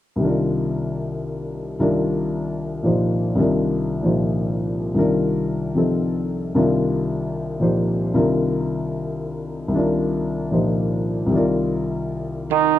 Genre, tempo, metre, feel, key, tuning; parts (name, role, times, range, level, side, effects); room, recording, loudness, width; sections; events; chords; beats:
modal jazz; 151 BPM; 4/4; swing 66% on 8ths; C minor; A4 = 436 Hz
warm upright piano; accompaniment; 0.2-12.8 s; C2 to D5; -19 LUFS; left 1 dB
mellow trumpet; melody; 12.5-12.8 s; Eb4; -16 LUFS; right 10 dB
breathy alto saxophone; second line; 12.5-12.8 s; Eb3; -21 LUFS; right 15 dB
little or no reverb; close, detailed microphones; -19 LUFS; side -12 dB against mid
0.2-12.8 A section
0.2 Cm11
| 0.21 0.60 1.00 1.40 | 1.79 2.19 2.59 2.99 | 3.38 3.78 4.18 4.57 | 4.97 5.37 5.77 6.16 | 6.56 6.96 7.35 7.75 | 8.15 8.54 8.94 9.34 | 9.73 10.13 10.53 10.92 | 11.32 11.72 12.11 12.51